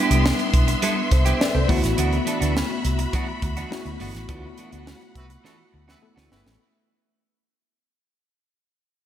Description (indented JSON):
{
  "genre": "polished 1980s jazz-funk pop",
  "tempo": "104 BPM",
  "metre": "4/4",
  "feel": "straight",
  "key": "D mixolydian",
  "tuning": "A4 = 440 Hz",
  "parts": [
    { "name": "tine electric piano", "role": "accompaniment", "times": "0.0-6.6 s", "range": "G3 to E5", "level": "-27 LUFS", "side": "left 2 dB", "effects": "medium stereo tremolo, analog chorus, slapback echo" },
    { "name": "rich studio string section", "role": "sustained chords", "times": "0.0-6.6 s", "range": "B3 to C6", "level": "-29 LUFS", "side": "left 2 dB", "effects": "none" },
    { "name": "clean electric guitar", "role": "riff", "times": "0.0-6.5 s", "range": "E3 to A4", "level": "-28 LUFS", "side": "right 4 dB", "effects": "wide subtle chorus, slapback echo" },
    { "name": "vintage muted fingered electric bass", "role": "bass", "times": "0.1-6.6 s", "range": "G1 to D2", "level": "-23 LUFS", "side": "equal", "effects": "none" },
    { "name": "crisp fusion drum kit", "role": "drums", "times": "0.1-6.6 s", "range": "hi-hat, kick drum, snare drum", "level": "-24 LUFS", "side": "equal", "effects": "none" },
    { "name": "mellow horn section", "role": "second line", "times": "5.2-6.5 s", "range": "B3 to B4", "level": "-60 LUFS", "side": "right 1 dB", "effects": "digital delay" }
  ],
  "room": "moderate lush hall reverb, RT60 2.1 s",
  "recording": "big arena sound",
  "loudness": "-19 LUFS",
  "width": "side -11 dB against mid",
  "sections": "0.0-6.6 A section",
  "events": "fade-out 0.0-6.6; band accent 4.3-6.6; drum fill 5.4-6.6",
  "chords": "0.0 Cmaj7; 1.7 D69",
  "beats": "0.25 0.83 1.40 | 1.98 2.56 3.13 3.71 | 4.29 4.87 5.44 6.02"
}